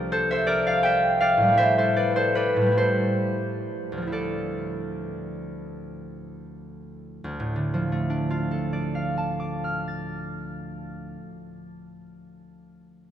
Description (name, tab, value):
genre	classical, solo harp piece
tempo	36-55 BPM (dotted quarters)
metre	6/8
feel	rubato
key	D minor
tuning	A4 = 440 Hz
part	concert harp	solo	0.0-11.9 s	C2 to A6	-24 LUFS	equal	none
room	wet cathedral reverb, RT60 5.0 s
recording	none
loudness	-22 LUFS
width	side -10 dB against mid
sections	0.0-7.2 A section; 7.2-10.5 B section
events	slowing down 0.5-7.2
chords	0.0 C9sus4; 1.6 Am7; 4.1 Dmadd9; 7.2 Dm